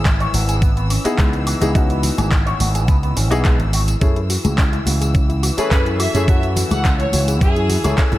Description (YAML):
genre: nu-disco, nu disco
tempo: 106 BPM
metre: 4/4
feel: straight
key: C# minor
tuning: A4 = 440 Hz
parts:
  - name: dark studio string section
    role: sustained chords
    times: 0.0-8.2 s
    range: E3 to E6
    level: -28 LUFS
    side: left 1 dB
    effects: sidechain pumping
  - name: electric guitar with an envelope filter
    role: riff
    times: 0.0-3.8 s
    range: G#3 to C#5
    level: -28 LUFS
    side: equal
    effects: analog chorus, tape echo
  - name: slap bass with an envelope filter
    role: bass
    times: 0.0-8.2 s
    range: G#1 to F#2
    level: -19 LUFS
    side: equal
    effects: tube saturation
  - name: electronic kick drum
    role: drums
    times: 0.1-8.1 s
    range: none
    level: -16 LUFS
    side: equal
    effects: none
  - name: house drum kit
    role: drums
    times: 0.1-8.2 s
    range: handclaps, hi-hat, tambourine, woodblock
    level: -24 LUFS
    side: equal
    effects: overdrive
  - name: egg shaker and congas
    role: percussion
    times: 0.1-8.2 s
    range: none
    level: -29 LUFS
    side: left 2 dB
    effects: none
  - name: clear concert grand piano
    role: accompaniment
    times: 1.0-8.2 s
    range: A3 to G#4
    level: -24 LUFS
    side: left 2 dB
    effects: tape echo
  - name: soft round pluck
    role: arpeggios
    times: 4.0-8.2 s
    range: C#4 to G#4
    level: -27 LUFS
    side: left 2 dB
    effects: chorus, sidechain pumping, tape echo
  - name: clear studio violin section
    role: melody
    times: 5.6-8.0 s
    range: G#4 to F#5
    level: -23 LUFS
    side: equal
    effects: tape echo
room: little or no reverb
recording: none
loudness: -14 LUFS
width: side -15 dB against mid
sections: 0.0-8.2 A section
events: none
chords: 0.0 C#m9; 4.0 F#m9